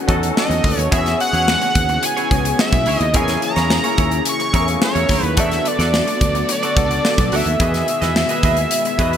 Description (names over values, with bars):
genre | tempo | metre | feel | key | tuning
polished 1980s jazz-funk pop | 108 BPM | 4/4 | straight | E major | A4 = 440 Hz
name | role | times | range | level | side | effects
barky tine electric piano | accompaniment | 0.0-9.2 s | D#3 to B4 | -23 LUFS | left 3 dB | overdrive, ensemble chorus
phased string machine | sustained chords | 0.0-9.2 s | B2 to G#4 | -28 LUFS | equal | ensemble chorus, phaser
clean electric guitar | riff | 0.1-9.2 s | E4 to D#5 | -26 LUFS | right 4 dB | wide subtle chorus
fingered electric bass | bass | 0.1-9.2 s | B1 to E2 | -21 LUFS | equal | none
modern studio drum kit | drums | 0.1-9.2 s | hi-hat, kick drum, snare drum | -20 LUFS | equal | gated reverb
fat analog lead | melody | 0.4-9.2 s | C#5 to C#6 | -20 LUFS | right 1 dB | none
room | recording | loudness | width
moderate lush hall reverb, RT60 2.3 s | bright 1980s-style digital production | -15 LUFS | side -9 dB against mid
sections
0.0-9.2 A section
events
none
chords
0.0 B7; 0.9 E6; 3.1 F#7; 5.4 Bm7; 7.6 Emaj7